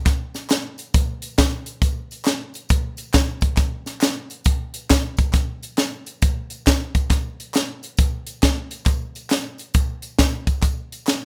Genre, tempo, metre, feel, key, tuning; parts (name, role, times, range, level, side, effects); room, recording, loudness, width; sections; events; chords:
gospel; 136 BPM; 4/4; swing 64% on 8ths
crisp fusion drum kit; drums; 0.1-11.2 s; hi-hat, kick drum, snare drum; -21 LUFS; equal
handclaps and tambourine; percussion; 0.1-11.2 s; -36 LUFS; equal
light reverb; rough home demo mix; -22 LUFS; mono
0.0-11.2 A section